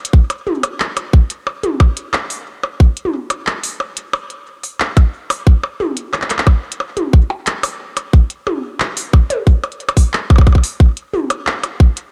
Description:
IDM; 90 BPM; 4/4; straight
glitchy drum kit; drums; 0.0-12.1 s; handclaps, hi-hat, percussion blips, toms; -22 LUFS; equal
electronic kick drum; drums; 0.1-11.9 s; -10 LUFS; equal
little or no reverb; dark, warm production; -16 LUFS; mono
0.0-12.1 A section

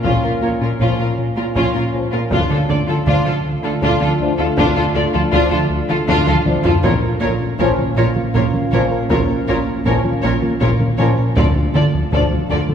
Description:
cinematic, hybrid orchestral and electronic film score; 53 BPM (dotted quarters); 6/8; straight; A4 = 439 Hz
rich symphonic violin section; melody; 0.0-12.6 s; F4 to D5; -24 LUFS; left 2 dB
analog drone; sustained chords; 0.0-12.7 s; A3 to F5; -24 LUFS; equal; chorus
smooth synth bass; riff; 0.0-12.7 s; D2 to Bb3; -22 LUFS; left 2 dB
dark studio double bass section; bass; 0.0-12.6 s; Bb1 to D2; -24 LUFS; right 2 dB
solo taiko drums; drums; 0.0-12.7 s; -23 LUFS; equal
rich symphonic violin section; second line; 0.1-12.6 s; Db4 to Bb4; -25 LUFS; left 2 dB
rich studio viola section; accompaniment; 0.1-12.6 s; F4; -25 LUFS; right 1 dB
harp-like synth pluck; arpeggios; 0.1-12.7 s; D3 to Bb4; -26 LUFS; right 3 dB
rich symphonic cello section; bass; 0.1-12.6 s; Bb2 to D3; -24 LUFS; right 2 dB
mellow French horn section; sustained chords; 0.8-12.3 s; F3 to D4; -25 LUFS; left 3 dB
wet scoring stage reverb, RT60 2.1 s; heard from further back in the room; -14 LUFS; side -8 dB against mid
0.0-12.7 A section
drum fill 6.3-6.8
0.0 Bbm; 2.3 Dm; 6.8 Bbm; 11.4 Dm

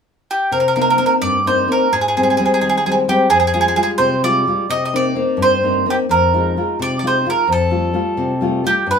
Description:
italian folk, Italian serenade; 86 BPM (dotted quarters); 6/8; straight; A4 = 439 Hz
bowl-back mandolin; melody; 0.3-9.0 s; G4 to Eb5; -16 LUFS; right 3 dB
nylon-string guitar; accompaniment; 0.5-9.0 s; F2 to F4; -17 LUFS; left 3 dB
wet studio reverb, RT60 0.5 s; band playing live in one room; -14 LUFS; side -6 dB against mid
0.5-9.0 A section
0.0 N.C.; 0.5 Cm7; 1.9 Abmaj7; 3.3 Fmadd9; 4.7 Cm7; 6.1 Fm7; 7.5 Fadd9

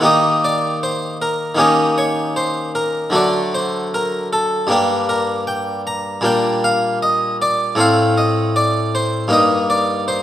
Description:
classical, baroque-style suite movement for harpsichord; 78 BPM; 4/4; rubato; A4 = 440 Hz
harpsichord; solo; 0.0-10.2 s; G2 to Bb5; -15 LUFS; equal
wet recital hall reverb, RT60 1.4 s; -15 LUFS; side -12 dB against mid
0.1-10.2 A section
0.1 Eb; 1.6 Eb7; 3.2 D; 4.7 Gm; 6.3 Gm/Bb; 7.8 Adim; 9.3 Eb/G

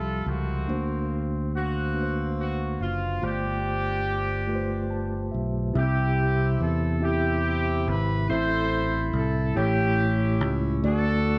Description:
slow gospel; 47 BPM (dotted quarters); 6/8; straight; C major; A4 = 440 Hz
warm horn section; melody; 0.0-11.4 s; Bb3 to C5; -32 LUFS; equal
mellow tine electric piano; accompaniment; 0.0-11.4 s; G2 to A5; -31 LUFS; equal
fingered electric bass; bass; 0.0-11.4 s; F#1 to E2; -29 LUFS; equal
light reverb, small room ambience; -26 LUFS; mono
0.0-5.8 A section; 5.8-11.4 B section
tine electric piano fill 4.5-5.8
0.0 Fmaj9/C; 0.7 Daug7; 3.2 G9sus4; 5.8 C; 8.3 Am; 9.6 A7; 10.8 D

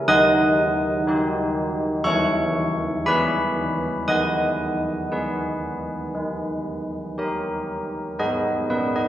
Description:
classical, tune for church bells; 59 BPM; 4/4; straight; G# minor; A4 = 440 Hz
old church bells; solo; 0.0-9.1 s; D#3 to D#6; -20 LUFS; equal
wet recital hall reverb, RT60 1.4 s; recorded in a church or concert hall; -20 LUFS; side -12 dB against mid
0.0-8.2 A section
0.1 D#; 2.0 E; 4.1 G#m/D#; 6.1 D#; 8.2 G#m

